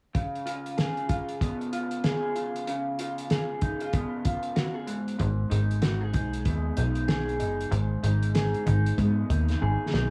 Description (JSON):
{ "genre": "indie pop, bedroom pop", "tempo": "95 BPM", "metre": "4/4", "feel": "swing 60% on 16ths", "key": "unclear", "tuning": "A4 = 442 Hz", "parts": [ { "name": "electric guitar through a small old amp", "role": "accompaniment", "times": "0.1-10.1 s", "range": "G#2 to G#4", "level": "-33 LUFS", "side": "equal", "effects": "analog chorus, warbly pitch drift" }, { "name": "cloth-damped thuddy drum kit", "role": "drums", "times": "0.1-10.1 s", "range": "hi-hat, kick drum, snare drum", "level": "-32 LUFS", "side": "equal", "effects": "none" }, { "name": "plucky analog bass", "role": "bass", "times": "5.2-10.1 s", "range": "F#1 to G#2", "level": "-28 LUFS", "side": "equal", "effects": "none" } ], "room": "light reverb, small room ambience", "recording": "none", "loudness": "-28 LUFS", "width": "mono", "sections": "0.1-10.1 A section", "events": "drum fill 9.6-10.1", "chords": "0.1 C#7; 4.9 G#m7", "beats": "| 0.15 0.78 1.41 2.04 | 2.68 3.31 3.94 4.57 | 5.21 5.84 6.47 7.10 | 7.73 8.36 9.00 9.63" }